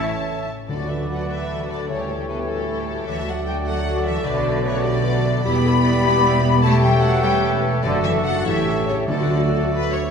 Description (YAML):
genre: classical, dramatic, fast romantic movement for symphony orchestra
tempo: 100 BPM (dotted quarters)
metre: 6/8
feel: rubato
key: D major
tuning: A4 = 440 Hz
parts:
  - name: warm symphonic violin section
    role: melody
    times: 0.0-10.1 s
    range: E4 to A5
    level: -32 LUFS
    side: left 4 dB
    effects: none
  - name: clear clarinet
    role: second line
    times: 0.0-10.1 s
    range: F#4 to C#5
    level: -31 LUFS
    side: left 3 dB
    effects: none
  - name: mellow hollow flute section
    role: second line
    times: 0.0-9.7 s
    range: A4 to B5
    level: -27 LUFS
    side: left 3 dB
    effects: none
  - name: rich symphonic violin section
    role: second line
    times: 0.0-9.7 s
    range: A4 to B5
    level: -28 LUFS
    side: left 4 dB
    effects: none
  - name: warm oboe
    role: second line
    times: 0.0-10.1 s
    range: C#5 to D5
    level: -33 LUFS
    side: left 1 dB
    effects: none
  - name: dark symphonic viola section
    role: accompaniment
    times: 0.0-10.0 s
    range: C#4 to B4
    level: -32 LUFS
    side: right 1 dB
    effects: none
  - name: warm bassoon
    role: accompaniment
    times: 0.0-10.1 s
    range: D3 to A3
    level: -30 LUFS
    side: right 2 dB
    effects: none
  - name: mellow trombone section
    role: sustained chords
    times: 0.0-10.1 s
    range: E3 to A3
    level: -30 LUFS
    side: right 3 dB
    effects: none
  - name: warm French horn section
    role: sustained chords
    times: 0.0-10.1 s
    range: A3 to G4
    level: -31 LUFS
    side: left 3 dB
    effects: none
  - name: concert harp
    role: arpeggios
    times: 0.0-10.1 s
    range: E2 to G5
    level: -29 LUFS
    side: left 4 dB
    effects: none
  - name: warm trumpet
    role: stabs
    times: 0.0-10.1 s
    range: A4 to E5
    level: -31 LUFS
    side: right 1 dB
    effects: none
  - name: rich symphonic cello section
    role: bass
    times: 0.0-9.7 s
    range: A2 to B3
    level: -27 LUFS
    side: right 2 dB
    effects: none
  - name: warm symphonic double bass section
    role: bass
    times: 0.0-10.1 s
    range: E1 to D2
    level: -24 LUFS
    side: right 1 dB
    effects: none
  - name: timpani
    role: percussion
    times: 0.7-1.3, 9.1-9.7 s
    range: D3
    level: -25 LUFS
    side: right 1 dB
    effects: none
room: wet recital hall reverb, RT60 1.4 s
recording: heard from further back in the room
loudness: -18 LUFS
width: side -6 dB against mid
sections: 0.7-10.1 A section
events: none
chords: 0.0 A; 0.7 D; 1.9 A7/D; 3.1 D; 4.3 Bm7; 5.5 Em7; 6.6 A7/E; 7.8 D/F#; 8.5 A7; 9.1 D